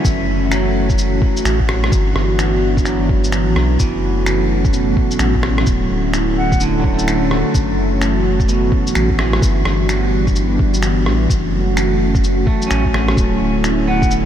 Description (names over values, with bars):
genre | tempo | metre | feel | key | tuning
future garage | 128 BPM | 4/4 | swing 63% on 16ths | F# phrygian | A4 = 440 Hz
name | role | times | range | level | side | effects
electric guitar at the edge of break-up | accompaniment | 0.0-9.6, 12.5-14.3 s | B2 to C#4 | -25 LUFS | right 2 dB | sidechain pumping, ping-pong delay
airy breathy pad | sustained chords | 0.0-14.3 s | D3 to F#4 | -18 LUFS | equal | chorus, sidechain pumping
soft dub sub bass | bass | 0.0-14.3 s | D1 to B1 | -19 LUFS | equal | sidechain pumping
electronic kick drum | drums | 0.0-14.1 s | none | -18 LUFS | equal | none
electronic shaker, finger snaps and rim click | drums | 0.0-14.2 s | none | -23 LUFS | equal | none
silver concert flute | melody | 6.4-6.6, 13.9-14.1 s | F#5 | -28 LUFS | left 1 dB | ping-pong delay
room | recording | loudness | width
moderate huge ambient reverb, RT60 8.2 s | dreamy mix soaked in reverb | -14 LUFS | side -10 dB against mid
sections
0.0-14.3 A section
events
none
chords
0.0 F#m7; 1.9 Em9/G; 3.8 F#m7; 5.7 Dmaj9; 7.5 F#m7; 9.4 Em9/G; 11.3 F#m7; 13.2 Dmaj9